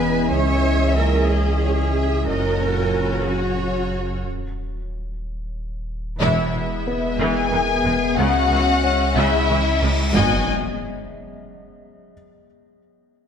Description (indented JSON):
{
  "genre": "cinematic, hybrid orchestral and electronic film score",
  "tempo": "61 BPM (dotted quarters)",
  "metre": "6/8",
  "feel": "straight",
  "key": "G# minor",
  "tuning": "A4 = 435 Hz",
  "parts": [
    { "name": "warm symphonic violin section", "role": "melody", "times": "0.0-10.5 s", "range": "C#5 to G#5", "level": "-25 LUFS", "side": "left 5 dB", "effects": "none" },
    { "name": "rich studio violin section", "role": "second line", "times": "0.0-10.5 s", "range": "E4 to G#5", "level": "-27 LUFS", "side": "left 2 dB", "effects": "none" },
    { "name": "clear symphonic viola section", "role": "accompaniment", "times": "0.0-10.5 s", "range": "C#3 to G#4", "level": "-28 LUFS", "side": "equal", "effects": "none" },
    { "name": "mellow French horn section", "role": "sustained chords", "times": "0.0-10.4 s", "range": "A#2 to C#4", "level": "-28 LUFS", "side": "left 4 dB", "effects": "none" },
    { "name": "mellow trombone section", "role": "sustained chords", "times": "0.0-4.2 s", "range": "C#3 to G#3", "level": "-30 LUFS", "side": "right 4 dB", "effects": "none" },
    { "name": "warbly tape-like pad", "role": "sustained chords", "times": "0.0-10.5 s", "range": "A#2 to G#5", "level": "-30 LUFS", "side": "equal", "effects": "chorus, built-in reverb" },
    { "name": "pure sine sub bass", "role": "bass", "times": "0.0-10.5 s", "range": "D#1 to C#2", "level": "-25 LUFS", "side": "equal", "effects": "none" },
    { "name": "rich symphonic cello section", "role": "bass", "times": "0.0-10.5 s", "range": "C#2 to C#5", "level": "-27 LUFS", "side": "right 4 dB", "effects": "none" },
    { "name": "rich symphonic double bass section", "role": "bass", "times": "0.0-10.5 s", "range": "E1 to F#2", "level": "-26 LUFS", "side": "right 2 dB", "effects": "none" },
    { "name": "felt-muted upright piano", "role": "texture", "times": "0.0-2.3, 6.9-10.2 s", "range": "B3 to C#5", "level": "-33 LUFS", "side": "left 3 dB", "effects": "none" },
    { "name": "cymbal swell and impact", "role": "sound effects", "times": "9.4-12.1 s", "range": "none", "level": "-29 LUFS", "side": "equal", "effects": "none" }
  ],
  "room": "wet scoring stage reverb, RT60 1.4 s",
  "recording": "none",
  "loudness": "-17 LUFS",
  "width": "side -7 dB against mid",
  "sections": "0.0-6.2 A section; 6.2-10.1 B section; 10.1-12.1 C section",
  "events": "break 4.2-6.2; band accent 6.2-6.9; cymbal swell 9.4-10.1; impact 10.1-12.1",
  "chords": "0.3 C#m; 2.3 F#; 4.2 N.C.; 6.2 E; 8.2 C#m; 10.1 G#m7",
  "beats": "| 0.31 1.29 | 2.28 3.26 | 4.25 5.23 | 6.21 7.20 | 8.18 9.16 | 10.15 11.13"
}